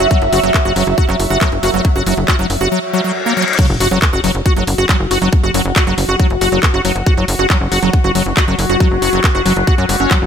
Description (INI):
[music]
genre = psychedelic trance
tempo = 138 BPM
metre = 4/4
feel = straight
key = unclear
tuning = A4 = 440 Hz
[part]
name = evolving wavetable pad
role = sustained chords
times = 0.0-10.3 s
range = F#3 to F#4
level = -23 LUFS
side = left 2 dB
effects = phaser, built-in reverb, sidechain pumping
[part]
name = liquid acid bass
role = riff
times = 0.0-10.2 s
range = F#3 to F#4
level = -17 LUFS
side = equal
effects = chorus, auto-pan, sidechain pumping, dub echo
[part]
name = tight sequencer bass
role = bass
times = 0.0-10.3 s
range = F#1 to F#2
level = -18 LUFS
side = equal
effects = tube saturation
[part]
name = garage drum kit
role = drums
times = 0.0-10.2 s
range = crash cymbal, handclaps, hi-hat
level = -20 LUFS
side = equal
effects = studio reverb
[part]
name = ethereal airy pad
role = texture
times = 0.0-10.3 s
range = F#4 to F#5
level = -22 LUFS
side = right 2 dB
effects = ensemble chorus, built-in reverb, sidechain pumping
[part]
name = electronic kick drum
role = drums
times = 0.1-10.2 s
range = none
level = -14 LUFS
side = equal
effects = studio reverb
[part]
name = resonant blip pluck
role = second line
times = 1.6-2.0 s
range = F#3 to A#3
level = -31 LUFS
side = left 1 dB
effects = none
[part]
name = reverse cymbal and sub drop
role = sound effects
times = 2.9-5.3 s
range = none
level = -21 LUFS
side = left 4 dB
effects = none
[sound]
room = light reverb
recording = none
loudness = -11 LUFS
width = side -8 dB against mid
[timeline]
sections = 0.0-3.6 A section; 3.6-10.3 B section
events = reverse cymbal 2.9-3.6; drum fill 3.4; drop 3.6-10.3; impact 3.6-5.3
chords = 0.0 F#5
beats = | 0.11 0.54 0.98 1.41 | 1.85 2.28 2.72 3.15 | 3.59 4.02 4.46 4.89 | 5.33 5.76 6.20 6.63 | 7.07 7.50 7.93 8.37 | 8.80 9.24 9.67 10.11